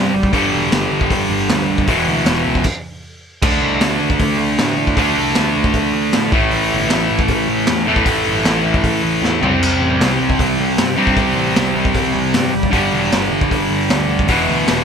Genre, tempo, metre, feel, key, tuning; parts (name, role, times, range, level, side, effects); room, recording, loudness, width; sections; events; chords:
punk rock; 155 BPM; 4/4; straight; A4 = 437 Hz
distorted electric guitar; riff; 0.0-14.8 s; E2 to D4; -15 LUFS; equal; distortion
fuzz picked electric bass; bass; 0.0-14.8 s; E1 to A2; -23 LUFS; equal; overdrive
raw garage drum kit; drums; 0.2-14.8 s; crash cymbal, hi-hat, kick drum, snare drum, splash cymbal, toms; -19 LUFS; equal
little or no reverb; -13 LUFS; side -6 dB against mid
0.0-3.4 A section; 3.4-14.8 A section
stop 2.7-3.4; drum fill 9.2-9.6
0.3 G5; 1.9 E5; 3.4 D5; 6.3 A5; 9.4 C5; 12.7 G5; 14.3 E5